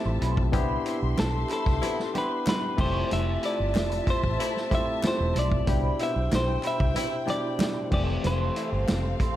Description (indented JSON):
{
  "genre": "lush 1970s-style soul",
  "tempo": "93 BPM",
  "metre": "4/4",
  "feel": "straight",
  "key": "C major",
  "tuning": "A4 = 440 Hz",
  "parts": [
    { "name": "warm studio string section", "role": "second line", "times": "0.0-9.4 s", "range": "C4 to C6", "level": "-36 LUFS", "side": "left 2 dB", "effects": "none" },
    { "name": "barky tine electric piano", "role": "accompaniment", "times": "0.0-9.4 s", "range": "B2 to G4", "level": "-32 LUFS", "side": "moving between left 8 dB and equal", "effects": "auto-pan" },
    { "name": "electric guitar through a small old amp", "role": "riff", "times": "0.1-9.4 s", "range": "G3 to D5", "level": "-37 LUFS", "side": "right 6 dB", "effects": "wah, lush chorus" },
    { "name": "vintage muted fingered electric bass", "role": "bass", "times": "0.1-9.1 s", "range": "E1 to C2", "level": "-27 LUFS", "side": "equal", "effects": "none" },
    { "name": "vintage drum kit", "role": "drums", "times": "0.2-9.4 s", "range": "crash cymbal, hi-hat, kick drum, snare drum", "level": "-29 LUFS", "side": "equal", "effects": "none" },
    { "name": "congas", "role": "percussion", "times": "0.5-9.0 s", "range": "none", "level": "-35 LUFS", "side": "right 3 dB", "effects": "none" },
    { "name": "warm horn section", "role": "stabs", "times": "0.9-8.7 s", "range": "B2 to E4", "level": "-34 LUFS", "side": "left 3 dB", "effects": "none" },
    { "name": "clean electric guitar", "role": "melody", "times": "1.2-9.2 s", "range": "A4 to E5", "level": "-30 LUFS", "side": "equal", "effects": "slapback echo" },
    { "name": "group handclap", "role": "percussion", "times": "1.2-9.0 s", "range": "none", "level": "-43 LUFS", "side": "left 4 dB", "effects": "none" }
  ],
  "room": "light reverb, small room ambience",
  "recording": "none",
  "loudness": "-24 LUFS",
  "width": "side -13 dB against mid",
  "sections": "0.0-9.4 A section",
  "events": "none",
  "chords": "0.0 Fmaj7; 0.5 Cmaj7; 2.8 Fmaj7; 5.7 Cmaj7; 7.9 Fmaj7",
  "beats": "| 0.53 1.17 1.82 2.46 | 3.10 3.74 4.38 5.03 | 5.67 6.31 6.95 7.60 | 8.24 8.88"
}